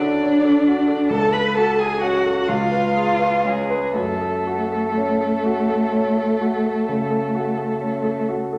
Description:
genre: classical, slow romantic movement for piano trio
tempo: 39-47 BPM (dotted quarters)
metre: 12/8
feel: rubato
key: F# minor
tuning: A4 = 441 Hz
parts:
  - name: warm violin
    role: melody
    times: 0.0-8.3 s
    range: G#4 to B5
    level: -28 LUFS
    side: equal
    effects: none
  - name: rich cello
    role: second line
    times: 0.0-8.3 s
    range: G#3 to B4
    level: -23 LUFS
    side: equal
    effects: none
  - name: clear concert grand piano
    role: accompaniment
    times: 0.0-8.6 s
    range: C#2 to C#5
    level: -25 LUFS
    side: equal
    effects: none
room: wet recital hall reverb, RT60 1.4 s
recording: none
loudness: -20 LUFS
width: mono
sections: 0.0-8.6 A section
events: none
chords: 0.0 Dmaj7; 1.1 F#m/C#; 2.5 C#7; 4.0 F#m

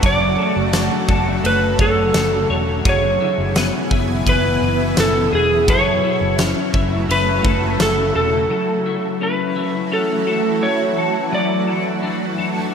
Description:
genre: dream pop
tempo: 85 BPM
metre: 4/4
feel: straight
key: F# minor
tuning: A4 = 441 Hz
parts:
  - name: electric slide guitar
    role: melody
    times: 0.0-12.7 s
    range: G#4 to D5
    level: -20 LUFS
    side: equal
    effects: ping-pong delay
  - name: shimmering ambient pad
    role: sustained chords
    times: 0.0-12.7 s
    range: F#2 to G#5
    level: -22 LUFS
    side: right 2 dB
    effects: chorus, built-in reverb
  - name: twelve-string electric guitar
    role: arpeggios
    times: 0.0-12.7 s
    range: F#3 to C#5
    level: -22 LUFS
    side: left 4 dB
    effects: ensemble chorus, ping-pong delay
  - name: vintage muted fingered electric bass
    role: bass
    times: 0.0-8.5 s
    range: E1 to F#1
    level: -23 LUFS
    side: equal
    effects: none
  - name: huge arena drum kit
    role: drums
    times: 0.0-8.0 s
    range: kick drum, ride cymbal, snare drum, tambourine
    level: -21 LUFS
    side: equal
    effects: none
room: moderate plate reverb, RT60 2.7 s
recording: bright 1980s-style digital production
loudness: -15 LUFS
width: side -7 dB against mid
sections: 0.0-8.5 A section; 8.5-12.7 A section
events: none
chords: 0.0 Dmaj7/F#; 2.9 E/F#; 5.7 F#m7; 11.3 Dmaj7/F#

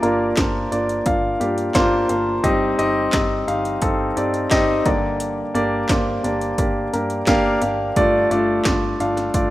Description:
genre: piano-driven pop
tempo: 87 BPM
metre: 4/4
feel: straight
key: G minor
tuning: A4 = 440 Hz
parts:
  - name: warm concert grand piano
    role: accompaniment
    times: 0.0-9.5 s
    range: G2 to Bb5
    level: -18 LUFS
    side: equal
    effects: none
  - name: vintage muted picked electric bass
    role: bass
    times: 0.0-9.5 s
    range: G1 to G2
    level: -31 LUFS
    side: right 1 dB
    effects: none
  - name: 80s electronic pad drums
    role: drums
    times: 0.0-9.5 s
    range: handclaps, hi-hat, kick drum, snare drum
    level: -23 LUFS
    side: equal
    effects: none
room: light reverb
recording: rough home demo mix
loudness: -17 LUFS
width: side -15 dB against mid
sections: 0.0-9.5 A section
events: grand piano fill 3.8-5.2, 9.3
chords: 0.0 Bb/G; 2.4 Cm/G; 4.9 Gm; 8.0 Dm/G

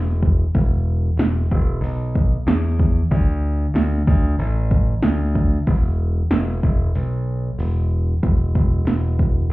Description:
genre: folk rock and heartland rock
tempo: 94 BPM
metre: 4/4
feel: straight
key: unclear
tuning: A4 = 440 Hz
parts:
  - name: modern bright picked electric bass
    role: bass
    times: 0.0-9.5 s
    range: E1 to E2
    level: -19 LUFS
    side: equal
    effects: none
  - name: deep house drum kit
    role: drums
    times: 0.2-9.3 s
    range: hi-hat, kick drum, snare drum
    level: -19 LUFS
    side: equal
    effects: overdrive
room: light reverb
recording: heard muffled through a wall, club reverb, EQ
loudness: -17 LUFS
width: side -19 dB against mid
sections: 0.0-8.2 A section; 8.2-9.5 B section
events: break 6.9-8.2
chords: none

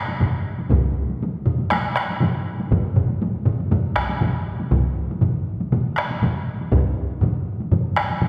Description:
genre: japanese traditional, taiko drum ensemble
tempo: 120 BPM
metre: 4/4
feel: straight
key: none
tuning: none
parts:
  - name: taiko ensemble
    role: percussion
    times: 0.1-8.3 s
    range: none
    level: -30 LUFS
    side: equal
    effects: none
  - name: solo taiko drums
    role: percussion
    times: 0.2-8.3 s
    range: none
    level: -27 LUFS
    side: equal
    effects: none
  - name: taiko ensemble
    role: percussion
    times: 0.2-8.3 s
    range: none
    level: -26 LUFS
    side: equal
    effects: none
  - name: taiko ensemble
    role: percussion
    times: 0.7-6.8 s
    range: none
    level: -27 LUFS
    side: equal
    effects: none
room: wet scoring stage reverb, RT60 2.2 s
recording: heard from further back in the room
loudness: -22 LUFS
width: mono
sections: 0.0-8.3 A section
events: none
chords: none

